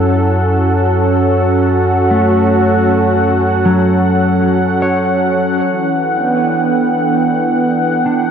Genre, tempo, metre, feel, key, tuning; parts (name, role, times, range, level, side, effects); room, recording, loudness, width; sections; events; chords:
ambient; free time; E dorian; A4 = 440 Hz
warm analog pad; sustained chords; 0.0-8.3 s; E3 to G5; -13 LUFS; right 1 dB; wide subtle chorus
mellow electric guitar; arpeggios; 0.0-8.3 s; F#3 to C#5; -17 LUFS; equal; diffuse ambient delay
warm sub bass; bass; 0.0-5.6 s; F#2; -18 LUFS; left 1 dB
wet concert hall reverb, RT60 2.2 s; -11 LUFS; side -7 dB against mid
0.0-5.7 A section; 5.7-8.3 B section
filter sweep on analog synth pad 0.0-5.7
0.0 F#m7; 5.7 Em7